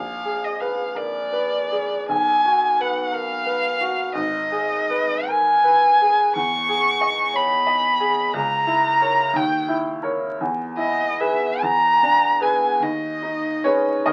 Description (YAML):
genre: classical, romantic duo for violin and grand piano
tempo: 46-61 BPM (dotted quarters)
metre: 6/8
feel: rubato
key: unclear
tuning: A4 = 440 Hz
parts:
  - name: rich violin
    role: melody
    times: 0.0-14.1 s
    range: D5 to C#6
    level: -22 LUFS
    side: equal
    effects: none
  - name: bright baby grand piano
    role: accompaniment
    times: 0.0-14.1 s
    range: Ab1 to D#5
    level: -26 LUFS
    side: equal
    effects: none
room: moderate studio reverb, RT60 0.8 s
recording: very old 78 rpm record, vinyl crackle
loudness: -20 LUFS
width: mono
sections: 0.0-14.1 A section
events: none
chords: 0.0 Bb7b9; 2.1 B5; 4.1 Abm; 6.4 Emaj7; 8.3 A#dim/C#; 9.4 D#5; 10.4 E; 11.6 E7; 12.8 G#m/D#